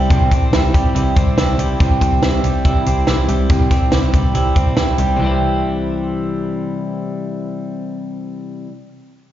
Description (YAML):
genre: jangly indie pop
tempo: 141 BPM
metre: 4/4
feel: straight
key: C major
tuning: A4 = 440 Hz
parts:
  - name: electric guitar through a small old amp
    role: accompaniment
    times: 0.0-8.8 s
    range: C3 to G4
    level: -22 LUFS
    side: right 6 dB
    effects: slapback echo
  - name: twelve-string electric guitar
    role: arpeggios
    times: 0.0-8.8 s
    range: C3 to E4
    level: -22 LUFS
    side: left 5 dB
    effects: slapback echo, analog delay
  - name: vintage muted picked electric bass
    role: bass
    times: 0.0-8.5 s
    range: C2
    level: -18 LUFS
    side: equal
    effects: none
  - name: compact cocktail drum kit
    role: drums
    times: 0.1-5.1 s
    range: hi-hat, kick drum, snare drum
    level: -16 LUFS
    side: equal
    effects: none
room: light reverb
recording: live gig heard through the venue's PA, recital hall reverb, nothing above 7.5 kHz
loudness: -14 LUFS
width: side -12 dB against mid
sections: 0.0-5.2 A section; 5.2-8.6 B section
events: none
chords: 0.0 C